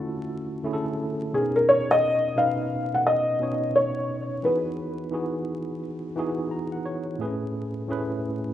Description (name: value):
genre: hip hop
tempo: 87 BPM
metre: 4/4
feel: swing 64% on 16ths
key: unclear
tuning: A4 = 440 Hz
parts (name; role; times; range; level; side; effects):
- felt-muted upright piano; melody; 0.0-5.8 s; G#4 to F#5; -22 LUFS; left 1 dB; low-pass filter, analog delay
- barky tine electric piano; accompaniment; 0.0-8.5 s; A2 to Bb5; -28 LUFS; right 1 dB; overdrive, fast stereo tremolo, low-pass filter
room: moderate lush hall reverb, RT60 2.2 s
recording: rough home demo mix, vinyl crackle, nothing above 10.7 kHz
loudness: -23 LUFS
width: side -11 dB against mid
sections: 0.0-8.5 A section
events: tine electric piano fill 6.2-7.2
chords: 0.0 Dmaj9; 1.3 Bmaj9; 4.4 Emaj9; 7.2 Amaj9